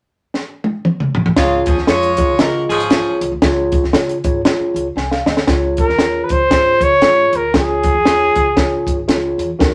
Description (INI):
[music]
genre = uptempo 1960s-style soul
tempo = 117 BPM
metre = 4/4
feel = swing 58% on 8ths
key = Db major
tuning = A4 = 439 Hz
[part]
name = compact cocktail drum kit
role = drums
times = 0.3-9.7 s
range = hi-hat, kick drum, snare drum, toms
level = -18 LUFS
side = equal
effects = none
[part]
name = clear saxophone section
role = second line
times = 1.4-3.2 s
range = Db3 to Db5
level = -20 LUFS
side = equal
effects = none
[part]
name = mellow tine electric piano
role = accompaniment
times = 1.4-9.7 s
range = Eb4 to Ab5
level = -22 LUFS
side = equal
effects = none
[part]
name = upright bass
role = bass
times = 1.4-9.7 s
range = Ab1 to Db3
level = -29 LUFS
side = equal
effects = none
[part]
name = warm trumpet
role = melody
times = 5.8-9.1 s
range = Ab4 to Db5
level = -16 LUFS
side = equal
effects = none
[sound]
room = moderate studio reverb, RT60 0.6 s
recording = none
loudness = -15 LUFS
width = mono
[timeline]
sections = 0.0-1.4 A section; 1.4-5.5 B section; 5.5-9.7 C section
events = drum fill 0.3-1.4, 5.0-5.5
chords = 0.0 N.C.; 1.4 Db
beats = 0.34 0.85 | 1.36 1.88 2.39 2.91 | 3.42 3.94 4.45 4.96 | 5.48 6.00 6.51 7.03 | 7.54 8.06 8.57 9.09 | 9.60